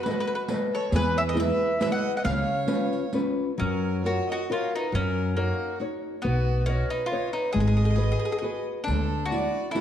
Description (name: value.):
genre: italian folk, Italian serenade.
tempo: 136 BPM.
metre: 3/4.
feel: swing 55% on 8ths, rubato.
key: F# major from 3.6 s.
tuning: A4 = 441 Hz.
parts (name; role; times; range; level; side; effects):
mandolin; melody; 0.0-9.8 s; A#3 to F#5; -30 LUFS; left 1 dB; none.
warm violin; second line; 0.0-9.8 s; F#4 to D#5; -33 LUFS; right 3 dB; none.
nylon-string guitar; accompaniment; 0.0-9.8 s; C#3 to D#5; -29 LUFS; left 3 dB; none.
riq; percussion; 0.1-3.4, 8.9-9.8 s; none; -31 LUFS; right 2 dB; none.
upright bass; bass; 0.9-9.5 s; G#1 to F#2; -26 LUFS; equal; none.
room: wet recital hall reverb, RT60 1.5 s.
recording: dark, warm production.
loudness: -24 LUFS.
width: side -10 dB against mid.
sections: 0.0-3.6 A section; 3.6-9.8 B section.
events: none.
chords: 0.0 B7; 0.9 E; 2.2 C#7; 3.6 F#maj7; 4.9 D#m7/F#; 6.2 Badd9; 7.5 G#m7; 8.9 Dadd9.